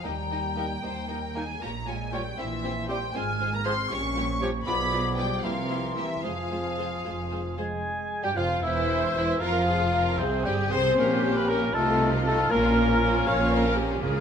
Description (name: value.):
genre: classical.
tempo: 77 BPM (dotted quarters).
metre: 6/8.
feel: rubato.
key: F minor.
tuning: A4 = 440 Hz.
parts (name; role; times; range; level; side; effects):
warm symphonic violin section; melody; 0.0-14.2 s; C4 to Db6; -34 LUFS; left 3 dB; none.
mellow hollow flute section; second line; 0.0-14.2 s; C5 to F6; -34 LUFS; left 2 dB; none.
warm symphonic viola section; accompaniment; 0.0-14.2 s; G3 to Db5; -33 LUFS; right 1 dB; none.
warm French horn section; sustained chords; 0.0-13.8 s; C3 to Db4; -34 LUFS; left 4 dB; none.
rich symphonic double bass section; bass; 0.0-14.2 s; E1 to Eb2; -32 LUFS; right 2 dB; none.
warm studio cello section; bass; 0.0-14.2 s; C2 to Db3; -32 LUFS; right 2 dB; none.
rich symphonic violin section; second line; 0.1-14.2 s; A3 to Eb5; -35 LUFS; left 3 dB; none.
mellow clarinet; second line; 0.6-13.8 s; C4 to C5; -33 LUFS; left 2 dB; none.
warm cor anglais; second line; 0.6-13.8 s; Ab4 to A5; -30 LUFS; right 1 dB; none.
warm bassoon; accompaniment; 0.6-14.2 s; C3 to Eb4; -34 LUFS; right 1 dB; none.
room: moderate recital hall reverb, RT60 1.3 s.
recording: none.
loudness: -24 LUFS.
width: side -8 dB against mid.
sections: 0.0-7.8 A section; 7.8-14.2 B section.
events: none.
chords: 0.0 Eb; 1.6 Gm7b5/Bb; 2.4 C7/Bb; 3.1 Fm/Ab; 3.9 Gm7b5/Bb; 4.7 Bdim7; 5.4 C7; 6.2 Fm; 7.8 Fm/Ab; 8.6 C/E; 9.4 Fm; 11.0 Bbm; 11.7 F7/C; 12.5 Bbm.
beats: | 0.05 0.83 | 1.62 2.39 | 3.15 3.90 | 4.67 5.44 | 6.23 7.04 | 7.84 8.63 | 9.40 10.19 | 10.98 11.75 | 12.51 13.27 | 14.03.